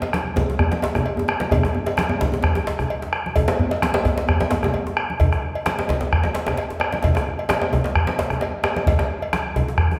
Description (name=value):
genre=west african traditional, West African drum ensemble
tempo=130 BPM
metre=4/4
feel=swing 53% on 16ths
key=none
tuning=none
part: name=cowbell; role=percussion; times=0.0-9.7 s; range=none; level=-33 LUFS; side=equal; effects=none
part: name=djembe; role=percussion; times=0.0-9.1 s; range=none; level=-26 LUFS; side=equal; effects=none
part: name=bombo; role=percussion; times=0.1-9.9 s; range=none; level=-25 LUFS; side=equal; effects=none
part: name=congas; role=percussion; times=0.1-10.0 s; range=none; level=-30 LUFS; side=equal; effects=none
part: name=djembe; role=percussion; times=0.1-10.0 s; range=none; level=-30 LUFS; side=equal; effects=none
room=wet recital hall reverb, RT60 1.6 s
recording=recorded in a church or concert hall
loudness=-21 LUFS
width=mono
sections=0.0-10.0 A section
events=none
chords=none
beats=0.13 0.59 1.05 | 1.52 1.98 2.44 2.90 | 3.36 3.82 4.28 4.74 | 5.20 5.66 6.12 6.58 | 7.04 7.50 7.96 8.42 | 8.88 9.33 9.79